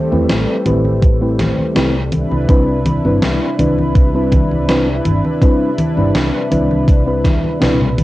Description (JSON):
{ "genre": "vaporwave", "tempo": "82 BPM", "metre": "4/4", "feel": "straight", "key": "C major", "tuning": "A4 = 441 Hz", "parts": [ { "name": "lush unison pad", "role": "sustained chords", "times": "0.0-8.0 s", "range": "C3 to B4", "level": "-21 LUFS", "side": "equal", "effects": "chorus" }, { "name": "mellow FM electric piano", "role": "accompaniment", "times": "0.1-7.8 s", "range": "G3 to B4", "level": "-18 LUFS", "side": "left 1 dB", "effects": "wide subtle chorus, analog delay" }, { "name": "mellow fretless electric bass", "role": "bass", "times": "0.1-8.0 s", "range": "G1 to E2", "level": "-19 LUFS", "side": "equal", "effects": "ensemble chorus" }, { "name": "gated 80s digital drum machine", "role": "drums", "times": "0.1-8.0 s", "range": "congas, hi-hat, snare drum, toms", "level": "-19 LUFS", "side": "equal", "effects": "gated reverb, gated reverb snare, vintage 12-bit sampler grit, cassette tape" }, { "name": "electronic kick drum", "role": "drums", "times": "1.0-7.4 s", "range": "none", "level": "-12 LUFS", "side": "equal", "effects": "vintage 12-bit sampler grit, cassette tape" } ], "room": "moderate studio reverb, RT60 0.6 s", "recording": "home recording on cassette", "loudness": "-12 LUFS", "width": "side -17 dB against mid", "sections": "0.0-8.0 A section", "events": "drum fill 7.6-8.0", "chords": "0.0 Am9; 2.1 Cmaj9" }